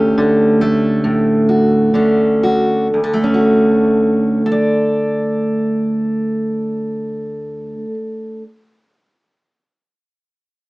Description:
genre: folk, solo fingerstyle acoustic guitar.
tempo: 58-70 BPM.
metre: 4/4.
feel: rubato.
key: D major.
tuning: A4 = 441 Hz.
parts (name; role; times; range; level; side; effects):
fingerpicked steel-string acoustic guitar; solo; 0.0-8.4 s; D2 to D5; -13 LUFS; equal; none.
room: moderate studio reverb, RT60 0.9 s.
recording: small speaker sound.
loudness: -13 LUFS.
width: side -21 dB against mid.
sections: 0.0-2.9 A section; 2.9-6.9 B section.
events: slowing down 0.0-2.9.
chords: 0.0 Dmaj7.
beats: 0.16 1.03 1.94 | 2.92 3.93 4.92 5.91.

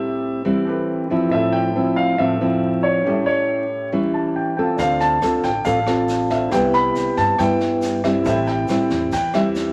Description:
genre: bossa nova.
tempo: 138 BPM.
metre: 4/4.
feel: straight.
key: A minor.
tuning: A4 = 443 Hz.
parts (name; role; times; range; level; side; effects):
dark concert grand piano; melody; 0.0-9.7 s; C#5 to B5; -24 LUFS; equal; none.
nylon-string guitar; accompaniment; 0.0-9.7 s; G2 to A4; -22 LUFS; equal; none.
warm concert grand piano; accompaniment; 0.0-9.7 s; A2 to A5; -32 LUFS; equal; none.
upright bass; bass; 4.8-9.7 s; A1 to G2; -31 LUFS; equal; none.
jazz brush drum kit; drums; 4.8-9.6 s; kick drum, rim click, snare drum; -34 LUFS; equal; none.
egg shaker; percussion; 4.8-9.7 s; none; -45 LUFS; equal; none.
room: moderate large studio reverb, RT60 1.2 s.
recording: vinyl crackle.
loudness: -19 LUFS.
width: mono.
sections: 0.0-9.7 A section.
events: grand piano fill 3.9-4.8.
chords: 0.0 Am7; 1.3 Fmaj7/A; 3.0 A7; 4.8 Dm7; 6.5 Cmaj7; 8.3 Am7.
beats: 0.01 0.45 0.88 | 1.31 1.75 2.18 2.62 | 3.05 3.48 3.92 4.35 | 4.79 5.22 5.65 6.09 | 6.52 6.96 7.39 7.82 | 8.26 8.69 9.13 9.56.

